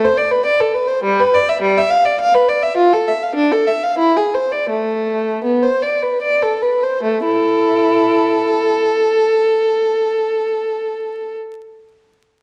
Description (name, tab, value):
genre	classical, baroque-style suite movement for unaccompanied violin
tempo	72-107 BPM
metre	3/4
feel	rubato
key	A minor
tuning	A4 = 440 Hz
part	warm violin	solo	0.0-11.4 s	G3 to F5	-16 LUFS	equal	none
room	wet recital hall reverb, RT60 1.4 s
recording	dark, warm production, vinyl crackle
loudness	-16 LUFS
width	mono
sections	0.0-7.0 A section; 7.0-11.7 B section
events	slowing down 1.9-7.0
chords	0.0 Am; 1.0 Em/G; 2.8 F; 3.4 Dm; 4.0 E7; 4.7 Am; 7.0 A5